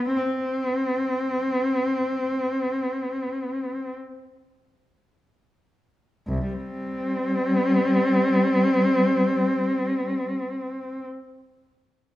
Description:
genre	classical, free, expressive piece for unaccompanied cello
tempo	free time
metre	none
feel	none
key	unclear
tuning	A4 = 439 Hz
part	warm cello	solo	0.0-11.0 s	C2 to C4	-22 LUFS	equal	none
room	wet recital hall reverb, RT60 1.4 s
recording	minimal, uncompressed stereo recording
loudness	-22 LUFS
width	side -15 dB against mid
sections	0.0-6.3 A section; 6.3-12.2 B section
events	slowing down 0.0-6.3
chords	none

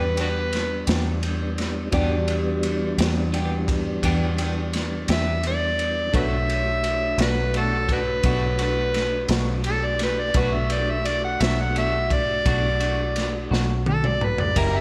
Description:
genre	slow blues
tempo	57 BPM (dotted quarters)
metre	12/8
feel	straight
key	B minor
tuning	A4 = 440 Hz
part	overdriven harmonica	melody	0.0-14.8 s	D4 to F#5	-27 LUFS	equal	slapback echo
part	clean electric guitar	accompaniment	0.0-14.8 s	B2 to G4	-34 LUFS	equal	harmonic tremolo, slapback echo
part	tine electric piano	accompaniment	0.0-14.8 s	D4 to C#6	-37 LUFS	equal	phaser, slapback echo
part	mellow tonewheel organ	sustained chords	0.0-14.8 s	E3 to G4	-33 LUFS	equal	slow rotary speaker, chorus vibrato
part	vintage muted fingered electric bass	bass	0.0-14.8 s	F#1 to E2	-28 LUFS	equal	none
part	crunchy breakbeat drum kit	drums	0.2-14.7 s	kick drum, ride cymbal, snare drum, splash cymbal, toms	-29 LUFS	equal	none
room	moderate lush hall reverb, RT60 1.7 s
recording	big arena sound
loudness	-23 LUFS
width	mono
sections	0.0-14.8 A section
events	harmonica solo 0.0-14.8; drum fill 13.5-14.6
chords	0.0 Em7; 6.1 Bm7

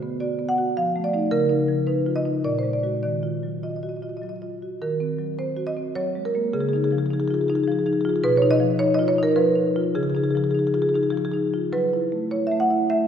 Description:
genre	classical, contemporary piece for solo marimba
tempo	104 BPM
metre	3/4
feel	rubato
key	unclear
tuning	A4 = 441 Hz
part	marimba with medium mallets	solo	0.0-13.1 s	Bb2 to F#5	-20 LUFS	equal	none
room	wet concert hall reverb, RT60 2.4 s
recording	heard from further back in the room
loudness	-20 LUFS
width	side -8 dB against mid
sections	0.0-4.8 A section; 4.8-13.1 A section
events	none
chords	0.0 D6; 0.8 F6; 1.3 Dbadd9; 2.4 Bbaug7; 3.0 Ebmadd9; 4.8 Ebm6; 6.0 Gbadd9; 6.5 Dbadd9; 8.2 B; 10.0 Dbadd9; 11.7 F#m7

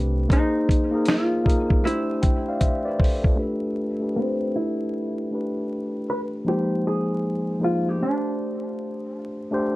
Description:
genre	lo-fi hip hop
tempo	78 BPM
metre	4/4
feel	swing 64% on 16ths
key	unclear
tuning	A4 = 436 Hz
part	mellow tine electric piano	accompaniment	0.0-9.8 s	F3 to G5	-25 LUFS	equal	cassette tape, low-pass filter
part	hollow-body jazz guitar	melody	0.3-9.1 s	C4 to B4	-27 LUFS	equal	low-pass filter
part	dusty soul sampler-style drum kit	drums	0.3-3.4 s	finger snaps, hi-hat, kick drum, snare drum	-20 LUFS	equal	vintage 12-bit sampler grit
room	light reverb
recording	vinyl crackle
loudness	-21 LUFS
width	side -18 dB against mid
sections	0.0-3.4 A section; 3.4-9.8 B section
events	drum fill 2.6-3.4; filter sweep 3.4-9.8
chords	0.3 Fm7; 1.8 Dsus2; 3.4 Asus2; 6.5 Fm7; 8.0 D5

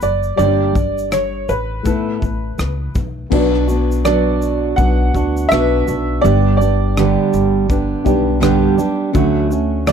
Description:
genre	acoustic pop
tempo	82 BPM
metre	4/4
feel	swing 60% on 16ths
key	unclear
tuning	A4 = 439 Hz
part	clear upright piano	melody	0.0-9.9 s	B4 to F#5	-20 LUFS	right 2 dB	none
part	felt-muted upright piano	accompaniment	0.0-9.9 s	G3 to F#5	-24 LUFS	left 10 dB	none
part	fingerpicked steel-string acoustic guitar	accompaniment	0.0-9.9 s	G2 to A4	-17 LUFS	right 3 dB	none
part	upright bass	bass	0.0-9.9 s	F#1 to A2	-19 LUFS	left 1 dB	none
part	natural country drum kit	drums	0.0-9.9 s	crash cymbal, kick drum, rim click, shaker	-21 LUFS	left 1 dB	none
room	little or no reverb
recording	dark, warm production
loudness	-14 LUFS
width	side -7 dB against mid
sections	0.0-3.3 A section; 3.3-9.9 B section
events	none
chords	0.4 Gm; 1.9 Asus2; 3.3 Bm; 6.2 G; 9.2 Dmaj7

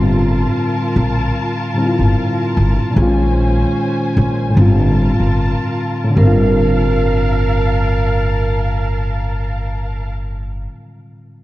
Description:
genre	lo-fi hip hop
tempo	75 BPM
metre	4/4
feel	swing 58% on 16ths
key	G minor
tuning	A4 = 439 Hz
part	reed electric piano	accompaniment	0.0-11.4 s	A2 to F4	-18 LUFS	left 1 dB	low-pass filter
part	warm studio string section	sustained chords	0.0-10.1 s	Db4 to A5	-24 LUFS	equal	low-pass filter
part	upright bass	bass	0.0-10.7 s	G1 to Bb1	-16 LUFS	equal	none
part	vibraphone with soft mallets	melody	6.2-8.5 s	Bb4	-21 LUFS	right 4 dB	low-pass filter, tape echo
room	moderate lush hall reverb, RT60 2.7 s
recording	dreamy mix soaked in reverb, cassette tape, nothing above 10.7 kHz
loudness	-13 LUFS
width	side -16 dB against mid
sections	0.0-6.2 A section; 6.2-9.4 B section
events	none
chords	0.0 Gm9; 3.0 Bbm9; 4.6 Gm9

